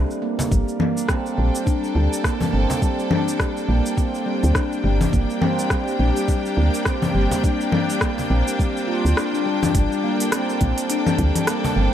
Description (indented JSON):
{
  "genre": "organic downtempo",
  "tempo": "104 BPM",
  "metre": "4/4",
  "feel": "swing 59% on 16ths",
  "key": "G minor",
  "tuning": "A4 = 440 Hz",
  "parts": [
    { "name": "handpan", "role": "arpeggios", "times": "0.0-11.9 s", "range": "G3 to F4", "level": "-23 LUFS", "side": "equal", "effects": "digital delay" },
    { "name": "woody FM bass", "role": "bass", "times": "0.0-11.9 s", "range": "G1 to D2", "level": "-19 LUFS", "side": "equal", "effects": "none" },
    { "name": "organic electronic drum kit", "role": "drums", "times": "0.1-11.7 s", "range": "cabasa, congas, hi-hat, rim click", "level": "-25 LUFS", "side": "left 2 dB", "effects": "none" },
    { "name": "cajon", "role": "percussion", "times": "0.4-11.7 s", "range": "none", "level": "-28 LUFS", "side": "equal", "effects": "none" },
    { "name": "clear symphonic string section", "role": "sustained chords", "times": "0.5-11.9 s", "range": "G3 to G5", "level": "-27 LUFS", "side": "equal", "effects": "sidechain pumping" },
    { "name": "electronic kick drum", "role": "drums", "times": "0.5-11.3 s", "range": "none", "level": "-22 LUFS", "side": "equal", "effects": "none" }
  ],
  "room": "light reverb",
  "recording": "none",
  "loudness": "-18 LUFS",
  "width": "side -10 dB against mid",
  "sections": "0.0-9.7 A section; 9.7-11.9 B section",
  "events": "none",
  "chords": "0.0 Gmadd9"
}